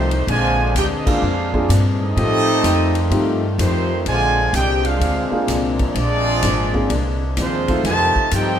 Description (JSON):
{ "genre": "jazz, big band swing", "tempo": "127 BPM", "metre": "4/4", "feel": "swing 66% on 8ths", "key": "unclear", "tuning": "A4 = 440 Hz", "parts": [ { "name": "clear trumpet section", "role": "melody", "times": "0.0-8.6 s", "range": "Ab3 to A5", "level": "-21 LUFS", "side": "right 1 dB", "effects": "none" }, { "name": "bright trombone section", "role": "second line", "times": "0.0-8.6 s", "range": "C3 to G4", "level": "-23 LUFS", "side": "right 2 dB", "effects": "none" }, { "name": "picked plugged-in steel-string acoustic guitar", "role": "accompaniment", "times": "0.0-8.6 s", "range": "Bb2 to G4", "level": "-27 LUFS", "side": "left 5 dB", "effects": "none" }, { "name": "clear trombone section", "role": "sustained chords", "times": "0.0-8.6 s", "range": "C3 to Ab4", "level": "-30 LUFS", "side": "left 1 dB", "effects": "none" }, { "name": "upright bass", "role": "bass", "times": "0.0-8.6 s", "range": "Ab1 to A2", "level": "-20 LUFS", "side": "equal", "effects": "none" }, { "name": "swinging big-band drum kit", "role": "drums", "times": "0.1-8.5 s", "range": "crash cymbal, hi-hat, kick drum, ride cymbal, snare drum", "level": "-26 LUFS", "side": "equal", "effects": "none" }, { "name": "warm concert grand piano", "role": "accompaniment", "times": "1.1-7.8 s", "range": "A3 to A4", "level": "-23 LUFS", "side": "left 1 dB", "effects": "none" } ], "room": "light reverb", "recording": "minimal, uncompressed stereo recording", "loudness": "-16 LUFS", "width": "side -9 dB against mid", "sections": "0.0-8.6 A section", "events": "band accent 1.0", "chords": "0.3 Bb9; 2.2 F9; 4.1 Bb9; 7.8 F9", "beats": "| 0.28 0.76 1.23 1.70 | 2.17 2.65 3.12 3.59 | 4.07 4.54 5.01 5.48 | 5.96 6.43 6.90 7.38 | 7.85 8.32" }